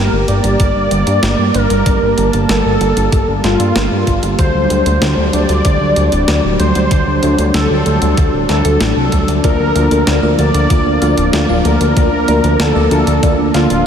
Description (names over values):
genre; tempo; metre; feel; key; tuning
synthwave; 95 BPM; 4/4; straight; G minor; A4 = 440 Hz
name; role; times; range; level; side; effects
wide unison lead; melody; 0.0-13.9 s; F4 to D5; -16 LUFS; left 1 dB; lush chorus, analog delay
warm analog pad; sustained chords; 0.0-13.9 s; F3 to A5; -17 LUFS; right 1 dB; chorus, sidechain pumping
fat analog bass; bass; 0.0-13.8 s; D1 to G2; -15 LUFS; equal; sidechain pumping
clean 12-bit digital drum machine; drums; 0.3-13.8 s; hi-hat, snare drum; -20 LUFS; right 1 dB; none
electronic kick drum; drums; 0.6-13.4 s; none; -16 LUFS; equal; none
FM electric piano with soft pad layer; stabs; 9.4-13.7 s; Bb3 to F5; -19 LUFS; left 2 dB; chorus, phaser, diffuse ambient delay
room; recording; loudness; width
moderate huge ambient reverb, RT60 8.1 s; dreamy mix soaked in reverb; -10 LUFS; side -8 dB against mid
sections
0.0-13.9 A section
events
none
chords
0.0 Gmadd9; 4.4 D; 9.4 Bb/D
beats
0.60 1.23 | 1.86 2.49 3.12 3.75 | 4.39 5.02 5.65 6.28 | 6.91 7.54 8.18 8.81 | 9.44 10.07 10.70 11.33 | 11.97 12.60 13.23 13.86